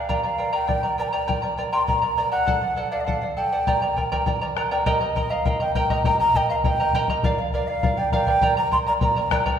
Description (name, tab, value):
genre	andean folk, Andean ensemble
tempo	101 BPM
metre	2/4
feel	straight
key	G minor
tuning	A4 = 439 Hz
part	mellow large quena	melody	0.0-9.4 s	D5 to C6	-23 LUFS	equal	none
part	charango	accompaniment	0.0-9.6 s	G4 to Bb5	-24 LUFS	right 1 dB	none
part	bombo	percussion	0.1-9.6 s	none	-26 LUFS	left 2 dB	none
room	wet recital hall reverb, RT60 1.7 s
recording	recorded in a church or concert hall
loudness	-20 LUFS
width	side -8 dB against mid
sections	0.0-4.9 A section; 4.9-9.6 B section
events	none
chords	0.1 Gm; 2.5 D; 3.7 Gm; 4.9 Eb; 7.2 Bb; 8.4 Gm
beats	| 0.10 0.69 | 1.29 1.89 | 2.48 3.08 | 3.67 4.27 | 4.86 5.46 | 6.05 6.64 | 7.24 7.83 | 8.42 9.01